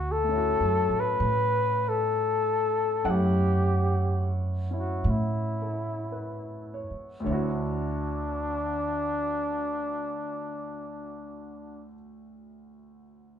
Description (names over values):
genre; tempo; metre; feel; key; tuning
jazz ballad; 51-68 BPM; 4/4; swing 69% on 8ths; D major; A4 = 438 Hz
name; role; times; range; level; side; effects
trumpet with bucket mute; melody; 0.0-11.9 s; D4 to B4; -28 LUFS; left 2 dB; none
upright bass; bass; 0.0-11.8 s; D2 to A2; -29 LUFS; right 1 dB; none
warm grand piano; accompaniment; 0.2-13.4 s; D2 to F#5; -35 LUFS; equal; none
room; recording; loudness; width
wet studio reverb, RT60 0.9 s; heard from further back in the room; -25 LUFS; side -9 dB against mid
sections
0.0-7.3 A section; 7.3-11.9 B section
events
slowing down 0.0-7.3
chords
0.0 Dmaj9 (rootless); 7.3 Dmaj9